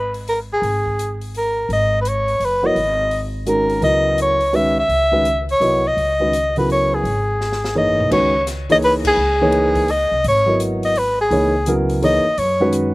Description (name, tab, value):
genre	modal jazz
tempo	168 BPM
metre	3/4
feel	swing 64% on 8ths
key	C# dorian from 8.1 s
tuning	A4 = 440 Hz
part	breathy soprano saxophone	melody	0.0-12.7 s	G#4 to E5	-17 LUFS	equal	slapback echo
part	upright bass	bass	0.0-12.9 s	F#1 to F#2	-24 LUFS	equal	none
part	open jazz drum kit	drums	0.1-12.8 s	crash cymbal, hi-hat, kick drum, snare drum, toms	-32 LUFS	left 1 dB	none
part	dark concert grand piano	accompaniment	2.6-12.9 s	C#3 to D#5	-19 LUFS	equal	none
room	little or no reverb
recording	recorded outdoors, with no room sound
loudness	-15 LUFS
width	side -20 dB against mid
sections	0.0-8.1 A section; 8.1-12.9 B section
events	drum fill 7.4-8.1; band accent 9.0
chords	0.0 G#7(no3); 3.8 C#m9; 12.4 F#sus4